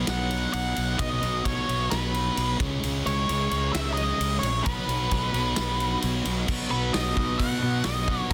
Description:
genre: quiet-loud alternative rock.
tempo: 131 BPM.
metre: 4/4.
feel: straight.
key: B major.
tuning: A4 = 438 Hz.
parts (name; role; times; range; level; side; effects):
electric guitar through a small old amp; arpeggios; 0.0-8.3 s; B2 to F#4; -40 LUFS; equal; none.
thick fuzz guitar; riff; 0.0-8.3 s; B2 to C#4; -33 LUFS; equal; distortion.
fuzz fingered electric bass; bass; 0.0-8.3 s; A#1 to B2; -31 LUFS; equal; overdrive.
octave-fuzz lead guitar; melody; 0.1-8.3 s; B4 to F#5; -32 LUFS; equal; distortion, tape echo.
big rock drum kit; drums; 0.1-8.3 s; crash cymbal, hi-hat, kick drum, ride cymbal, snare drum; -33 LUFS; equal; none.
overdriven electric guitar; riff; 6.5-8.3 s; B2 to B3; -37 LUFS; equal; none.
room: little or no reverb.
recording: dense, heavily limited modern master.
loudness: -26 LUFS.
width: mono.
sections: 0.0-6.5 A section; 6.5-8.3 B section.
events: half time 0.0-6.5; lead electric guitar solo 6.5-8.3.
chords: 0.0 B; 2.6 C#m; 4.7 B.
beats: 0.08 0.54 | 0.99 1.45 1.91 2.37 | 2.83 3.29 3.74 4.20 | 4.66 5.12 5.57 6.03 | 6.49 6.95 7.40 7.86 | 8.32.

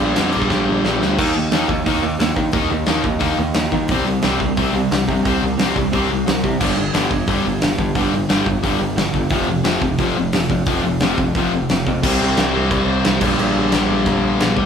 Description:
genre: punk rock.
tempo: 177 BPM.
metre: 4/4.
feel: straight.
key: G minor.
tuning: A4 = 440 Hz.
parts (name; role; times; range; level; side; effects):
distorted electric guitar; riff; 0.0-14.7 s; F2 to Eb4; -20 LUFS; left 4 dB; overdrive.
raw garage guitar; riff; 0.0-14.7 s; F2 to Eb4; -21 LUFS; right 4 dB; overdrive.
modern bright picked electric bass; bass; 0.0-14.7 s; F1 to Eb3; -24 LUFS; equal; none.
big rock drum kit; drums; 0.2-14.6 s; crash cymbal, hi-hat, kick drum, snare drum; -21 LUFS; equal; none.
room: moderate large studio reverb, RT60 1.1 s.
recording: band playing live in one room.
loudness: -15 LUFS.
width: side -7 dB against mid.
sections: 0.0-1.2 A section; 1.2-12.0 B section; 12.0-14.7 C section.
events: drum fill 0.5-1.2.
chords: 0.0 Gm; 1.2 Eb5; 3.9 C5; 6.6 G5; 9.3 F5; 12.0 C5; 13.2 Gm/Bb.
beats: 0.17 0.51 0.85 | 1.19 1.52 1.86 2.20 | 2.54 2.88 3.22 3.56 | 3.90 4.24 4.58 4.91 | 5.25 5.59 5.93 6.27 | 6.61 6.95 7.29 7.62 | 7.96 8.30 8.64 8.98 | 9.32 9.66 10.00 10.34 | 10.68 11.01 11.35 11.69 | 12.03 12.37 12.71 13.04 | 13.38 13.72 14.06 14.40.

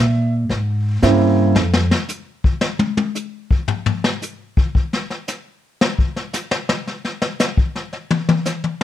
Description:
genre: jazz piano trio.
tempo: 113 BPM.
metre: 4/4.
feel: swing 68% on 8ths.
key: unclear.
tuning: A4 = 444 Hz.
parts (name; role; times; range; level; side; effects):
warm concert grand piano; melody; 0.0-1.6 s; Db3 to E5; -17 LUFS; right 5 dB; none.
upright bass; bass; 0.0-1.9 s; F2 to Bb2; -17 LUFS; left 1 dB; none.
jazz brush drum kit; drums; 0.5-8.8 s; brushed snare drum, hi-hat, kick drum, snare drum, toms; -18 LUFS; left 2 dB; none.
room: light reverb.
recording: none.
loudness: -17 LUFS.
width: side -11 dB against mid.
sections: 0.0-8.8 A section.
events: grand piano solo 0.0-8.8; drum solo 1.6-8.8.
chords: 0.0 C7b9; 1.6 N.C..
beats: 0.51 1.04 | 1.57 2.10 2.63 3.16 | 3.69 4.22 4.75 5.28 | 5.81 6.34 6.87 7.41 | 7.94 8.47.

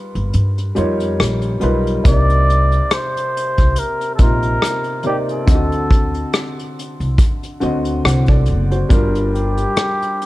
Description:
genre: lo-fi hip hop.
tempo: 70 BPM.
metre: 4/4.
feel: swing 56% on 16ths.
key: unclear.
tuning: A4 = 440 Hz.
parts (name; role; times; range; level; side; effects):
felt-muted upright piano; accompaniment; 0.0-10.3 s; C3 to F#5; -21 LUFS; left 1 dB; low-pass filter.
upright bass; bass; 0.2-9.6 s; F#1 to G2; -17 LUFS; equal; none.
vintage brush drum kit; drums; 0.2-10.3 s; hi-hat, kick drum, rim click; -16 LUFS; equal; none.
trumpet with cup mute; melody; 2.1-10.3 s; G4 to D5; -21 LUFS; equal; low-pass filter.
room: studio reverb.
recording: none.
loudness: -14 LUFS.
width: side -17 dB against mid.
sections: 0.0-10.3 A section.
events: break 0.0-2.0.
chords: 0.0 G7alt; 2.0 Cm9; 5.5 D7b9; 8.9 Gm7.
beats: 0.33 1.19 | 2.05 2.90 3.76 4.62 | 5.48 6.33 7.19 8.05 | 8.90 9.76.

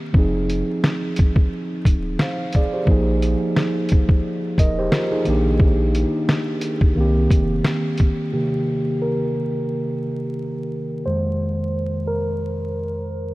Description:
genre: lo-fi hip hop.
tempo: 88 BPM.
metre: 4/4.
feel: swing 56% on 16ths.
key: C minor.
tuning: A4 = 443 Hz.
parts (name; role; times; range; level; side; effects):
mellow tine electric piano; accompaniment; 0.0-13.3 s; F2 to F5; -21 LUFS; right 1 dB; cassette tape, low-pass filter.
warm sub bass; bass; 0.1-7.6 s; D1 to C2; -22 LUFS; equal; none.
lo-fi sampler-style drum kit; drums; 0.1-8.2 s; hi-hat, kick drum, snare drum; -18 LUFS; equal; none.
room: light reverb.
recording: vinyl crackle.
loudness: -18 LUFS.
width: side -19 dB against mid.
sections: 0.0-8.3 A section; 8.3-13.3 B section.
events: tine electric piano solo 8.3-13.3; filter sweep on tine electric piano 8.3-13.3.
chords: 0.1 Fm7; 2.9 Bb7sus4; 5.3 Ebmaj7/Bb; 7.0 Cm7; 11.1 Fm7.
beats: | 0.14 0.83 1.51 2.19 | 2.87 3.55 4.24 4.92 | 5.60 6.28 6.96 7.64 | 8.33 9.01 9.69 10.37 | 11.05 11.74 12.42 13.10.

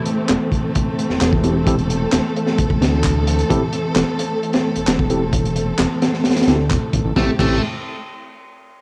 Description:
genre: breakbeat, breaks.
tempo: 131 BPM.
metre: 4/4.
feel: straight.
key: A minor.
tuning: A4 = 440 Hz.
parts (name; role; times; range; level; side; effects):
warm studio string section; sustained chords; 0.0-7.4 s; E3 to A4; -24 LUFS; equal; sidechain pumping, cassette tape.
crunchy breakbeat drum kit; drums; 0.1-7.5 s; crash cymbal, hi-hat, kick drum, snare drum; -22 LUFS; equal; cassette tape.
fat analog bass; bass; 0.3-7.6 s; E1 to D2; -23 LUFS; equal; none.
electronic handclaps; drums; 0.3-6.8 s; none; -31 LUFS; equal; cassette tape.
tine electric piano; stabs; 1.4-7.6 s; C4 to A4; -27 LUFS; equal; vintage 12-bit sampler grit, low-pass filter, cassette tape, analog delay.
fuzz guitar; riff; 7.2-7.6 s; A3; -28 LUFS; equal; distortion, tube saturation, cassette tape, analog delay.
room: light reverb, small room ambience.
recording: home recording on cassette.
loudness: -18 LUFS.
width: mono.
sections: 0.0-7.2 A section; 7.2-8.8 B section.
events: filter sweep on tine electric piano 0.0-7.2.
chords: 0.0 Am; 7.2 Am7.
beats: 0.29 0.75 1.21 | 1.67 2.13 2.58 3.04 | 3.50 3.96 4.42 4.87 | 5.33 5.79 6.25 6.71 | 7.16.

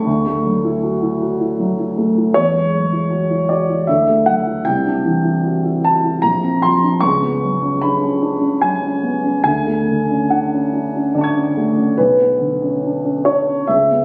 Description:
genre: classical, impressionist solo piano.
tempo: 68-80 BPM.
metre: 3/4.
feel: rubato.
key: unclear.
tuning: A4 = 443 Hz.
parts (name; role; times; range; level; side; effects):
warm grand piano; solo; 0.0-14.0 s; A#1 to G#6; -17 LUFS; equal; none.
room: moderate scoring stage reverb, RT60 1.7 s.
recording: recorded on a phone in the room, studio reverb, compression.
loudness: -17 LUFS.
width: mono.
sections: 0.0-14.0 A section.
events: none.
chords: 0.1 Dmaj9; 2.4 Eadd9; 3.9 Dadd9; 4.7 Cadd9; 6.2 A#add9; 7.0 C#7sus4; 9.4 Dmaj7#11; 12.0 Bmadd9.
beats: | 0.06 0.83 1.60 | 2.37 3.12 3.88 | 4.65 5.44 6.23 | 7.03 7.82 8.62 | 9.45 10.31 11.15 | 11.98 12.82 13.68.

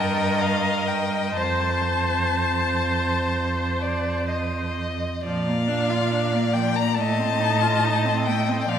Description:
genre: classical, slow romantic movement for string quartet.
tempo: 61-72 BPM.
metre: 4/4.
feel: rubato.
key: unclear.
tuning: A4 = 440 Hz.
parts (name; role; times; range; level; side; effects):
rich violin; melody; 0.0-8.8 s; F5 to Bb5; -26 LUFS; left 7 dB; none.
warm violin; second line; 0.0-8.8 s; C5 to Eb5; -28 LUFS; left 2 dB; none.
rich viola; accompaniment; 0.0-8.8 s; F3 to C5; -27 LUFS; right 2 dB; none.
rich cello; bass; 0.0-8.8 s; F2 to Bb2; -25 LUFS; right 2 dB; none.
room: wet church reverb, RT60 3.4 s.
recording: recorded in a church or concert hall.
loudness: -20 LUFS.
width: side -8 dB against mid.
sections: 0.0-5.2 A section; 5.2-8.8 A section.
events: none.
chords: 0.0 Eb/G; 1.4 F; 5.2 Bb; 7.0 F7/A.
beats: 0.44 | 1.38 2.36 3.33 4.29 | 5.25 6.12 6.97 7.84 | 8.68.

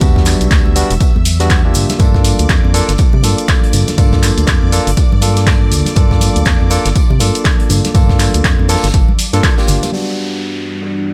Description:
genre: deep house.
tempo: 121 BPM.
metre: 4/4.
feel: swing 60% on 16ths.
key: unclear.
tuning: A4 = 440 Hz.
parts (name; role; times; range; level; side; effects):
barky tine electric piano; stabs; 0.0-11.1 s; G3 to A4; -21 LUFS; equal; sidechain pumping, low-pass filter, tape echo.
organ-like FM bass; bass; 0.0-9.8 s; E1 to C3; -17 LUFS; equal; sidechain pumping.
electronic kick drum; drums; 0.0-9.6 s; none; -15 LUFS; equal; none.
loose indie drum kit; drums; 0.0-11.1 s; hi-hat, snare drum, tambourine; -30 LUFS; equal; none.
punchy analog drum machine; drums; 0.0-11.0 s; handclaps, hi-hat; -21 LUFS; equal; low-pass filter on hats, low-pass filter on cymbals, low-pass filter on snare, low-pass filter on room.
congas; percussion; 0.0-9.9 s; none; -26 LUFS; equal; none.
maracas; percussion; 0.0-9.9 s; none; -28 LUFS; equal; none.
string machine, violins; texture; 0.0-9.9 s; D5 to E6; -32 LUFS; equal; ensemble chorus.
dark analog pad; sustained chords; 10.4-11.1 s; G3 to D5; -27 LUFS; equal; chorus, sidechain pumping.
downlifter; sound effects; 9.9-11.1 s; none; -27 LUFS; equal; none.
room: small room ambience.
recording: none.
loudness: -12 LUFS.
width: mono.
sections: 0.0-9.9 A section; 9.9-11.1 B section.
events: none.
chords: 0.0 Em7; 1.7 Gm7; 9.9 Em7.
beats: | 0.01 0.51 1.00 1.50 | 2.00 2.49 2.99 3.48 | 3.98 4.48 4.97 5.47 | 5.96 6.46 6.96 7.45 | 7.95 8.44 8.94 9.44 | 9.93 10.43 10.92.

